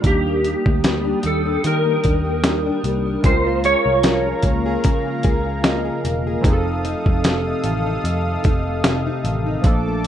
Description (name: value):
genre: indie pop, bedroom pop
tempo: 75 BPM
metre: 4/4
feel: swing 55% on 16ths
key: unclear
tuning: A4 = 439 Hz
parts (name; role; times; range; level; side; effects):
- clean lap steel guitar; melody; 0.0-6.0 s; G4 to Db5; -21 LUFS; equal; ensemble chorus, analog delay
- fingerpicked plugged-in steel-string acoustic guitar; accompaniment; 0.0-10.1 s; F2 to Ab4; -25 LUFS; left 4 dB; analog chorus, vibrato effect
- warm analog keys; accompaniment; 0.0-10.1 s; F3 to Eb5; -27 LUFS; right 4 dB; chorus, cassette tape
- warm analog pad; sustained chords; 0.0-10.1 s; A4 to Eb6; -27 LUFS; right 1 dB; chorus
- vintage muted picked electric bass; bass; 0.0-10.1 s; E1 to Eb3; -24 LUFS; equal; none
- dusty soul sampler-style drum kit; drums; 0.0-10.1 s; hi-hat, kick drum, snare drum; -19 LUFS; equal; vintage 12-bit sampler grit
room: light reverb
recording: rough home demo mix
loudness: -17 LUFS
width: side -10 dB against mid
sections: 0.0-10.1 A section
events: synth keys fill 5.2-6.4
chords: 0.0 Ebmaj7; 3.2 Db6; 6.4 F7